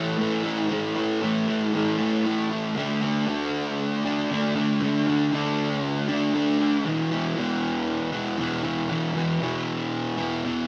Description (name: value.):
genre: rock.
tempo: 117 BPM.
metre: 4/4.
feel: straight.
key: unclear.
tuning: A4 = 439 Hz.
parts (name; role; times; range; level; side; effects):
fuzz guitar; solo; 0.0-10.7 s; E2 to D4; -25 LUFS; equal; distortion, subtle chorus.
room: wet studio reverb, RT60 0.5 s.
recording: none.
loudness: -25 LUFS.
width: mono.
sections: 0.0-2.8 A section; 2.8-10.7 B section.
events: none.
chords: 0.0 A5; 2.8 D5; 6.9 E5.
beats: 0.19 | 0.70 1.22 1.73 2.25 | 2.76 3.27 3.79 4.30 | 4.81 5.32 5.84 6.35 | 6.86 7.37 7.88 8.39 | 8.91 9.42 9.93 10.44.